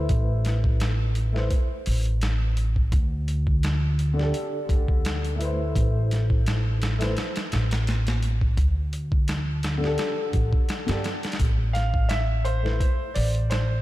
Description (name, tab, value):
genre	trip hop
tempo	85 BPM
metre	4/4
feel	swing 54% on 16ths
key	A minor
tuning	A4 = 440 Hz
part	dark upright piano	accompaniment	0.0-12.8 s	D3 to C5	-31 LUFS	left 2 dB	harmonic tremolo, tape echo
part	upright bass	bass	0.0-13.8 s	A1 to G2	-24 LUFS	equal	none
part	boom bap sampler-style drum kit	drums	0.1-13.7 s	hi-hat, kick drum, snare drum	-26 LUFS	equal	studio reverb
part	felt-muted upright piano	melody	11.7-13.8 s	C5 to F5	-29 LUFS	right 1 dB	vintage 12-bit sampler grit, dub echo
room	light reverb, small room ambience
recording	none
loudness	-22 LUFS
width	side -16 dB against mid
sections	0.0-13.8 A section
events	none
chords	0.1 Amadd9; 2.9 Dsus4; 5.7 Amadd9; 8.6 Dsus4; 11.4 Am